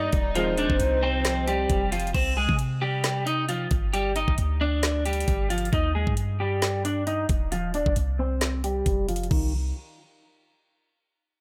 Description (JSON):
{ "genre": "hip hop, trap", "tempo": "134 BPM", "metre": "4/4", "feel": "half-time", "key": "C minor", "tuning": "A4 = 441 Hz", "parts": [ { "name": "electric guitar at the edge of break-up", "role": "melody", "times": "0.0-9.5 s", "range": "Eb3 to Eb5", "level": "-30 LUFS", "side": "equal", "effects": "lush chorus, low-pass filter, dub echo" }, { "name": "hollow clarinet-like synth lead", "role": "second line", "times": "0.0-1.7 s", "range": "C5 to D5", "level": "-32 LUFS", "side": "equal", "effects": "chorus, dub echo" }, { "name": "dark studio string section", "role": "sustained chords", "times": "0.0-2.1 s", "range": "B2 to Eb4", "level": "-35 LUFS", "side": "equal", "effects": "none" }, { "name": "clean 808-style bass", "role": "bass", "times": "0.0-9.7 s", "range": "Eb1 to C3", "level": "-30 LUFS", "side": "equal", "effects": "none" }, { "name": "trap drum kit", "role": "drums", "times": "0.1-9.4 s", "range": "crash cymbal, hi-hat, kick drum, snare drum", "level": "-30 LUFS", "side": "equal", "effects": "none" }, { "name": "warm brass ensemble", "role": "stabs", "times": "0.4-0.7 s", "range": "Eb3 to Ab3", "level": "-34 LUFS", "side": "equal", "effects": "dub echo" } ], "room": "digital ambience", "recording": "echo-heavy mix", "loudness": "-25 LUFS", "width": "mono", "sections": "0.0-2.1 A section; 2.1-9.3 B section; 9.3-11.1 C section", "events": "filter sweep on clean electric guitar 2.1-9.3", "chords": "0.4 F5; 2.1 C5; 3.9 G5; 5.7 Eb; 7.5 F5; 9.3 N.C." }